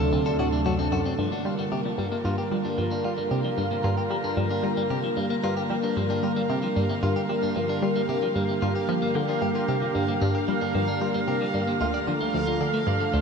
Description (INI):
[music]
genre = ambient, sequencer-driven space music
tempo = 113 BPM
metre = 4/4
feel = straight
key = G minor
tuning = A4 = 442 Hz
[part]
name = sweeping resonant pad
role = sustained chords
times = 0.0-13.2 s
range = C3 to Bb4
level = -26 LUFS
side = equal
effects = wide subtle chorus
[part]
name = clean electric guitar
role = arpeggios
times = 0.0-13.2 s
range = F3 to D5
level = -32 LUFS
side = left 2 dB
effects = auto-pan, low-pass filter, ping-pong delay
[part]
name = warm sub bass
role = bass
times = 0.0-1.2 s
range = D2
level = -30 LUFS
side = equal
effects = none
[part]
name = analog pluck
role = riff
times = 0.1-13.2 s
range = D2 to G3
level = -28 LUFS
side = equal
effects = chorus, phaser, ping-pong delay
[part]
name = bubbling stepped-filter texture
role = texture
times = 1.2-13.2 s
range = F5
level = -34 LUFS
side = right 4 dB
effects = chorus, built-in reverb
[sound]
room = wet shimmer reverb, RT60 6.8 s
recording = none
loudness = -23 LUFS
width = side -6 dB against mid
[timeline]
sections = 0.0-1.2 A section; 1.2-13.2 B section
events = none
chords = 0.0 D7; 1.2 Gm7; 11.8 Dm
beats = 0.13 0.66 | 1.19 1.72 2.25 2.78 | 3.31 3.84 4.37 4.90 | 5.43 5.97 6.50 7.03 | 7.56 8.09 8.62 9.15 | 9.68 10.21 10.74 11.28 | 11.81 12.34 12.87